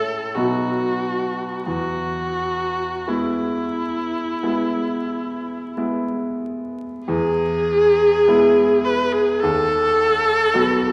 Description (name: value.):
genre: classical, romantic duo for viola and grand piano.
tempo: 42-55 BPM.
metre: 4/4.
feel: rubato.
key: E major.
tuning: A4 = 443 Hz.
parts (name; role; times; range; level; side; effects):
clear viola; melody; 0.0-10.9 s; E4 to B4; -21 LUFS; equal; none.
bright baby grand piano; accompaniment; 0.0-10.9 s; D#2 to F#4; -26 LUFS; equal; none.
room: wet concert hall reverb, RT60 2.1 s.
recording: recorded in a church or concert hall, vinyl crackle.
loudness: -20 LUFS.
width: mono.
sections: 0.0-7.1 A section; 7.1-10.9 A section.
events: none.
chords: 0.4 B; 1.7 E; 9.4 B7/D#.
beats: 0.36 | 1.67 3.09 4.45 5.78 | 7.09 8.28 9.43 10.54.